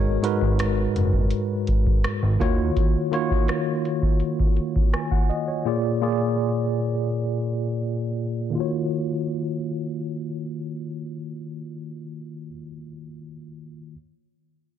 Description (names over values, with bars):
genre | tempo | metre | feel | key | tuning
contemporary R&B | 83 BPM | 4/4 | straight | Eb minor | A4 = 436 Hz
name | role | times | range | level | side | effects
tine electric piano | accompaniment | 0.0-14.0 s | Ab2 to Ab5 | -25 LUFS | equal | medium stereo tremolo
fat analog bass | bass | 0.0-2.7 s | Gb1 to Eb2 | -23 LUFS | equal | none
booming analog drum machine | drums | 0.2-5.5 s | hi-hat, kick drum, rim click | -22 LUFS | equal | none
room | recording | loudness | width
light reverb | low-pass filter | -22 LUFS | side -10 dB against mid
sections
0.0-8.5 A section; 8.5-11.4 B section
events
filter sweep 0.0-8.5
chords
0.0 Abm7; 2.4 Ebm7; 5.7 Bb7; 8.5 Ebm7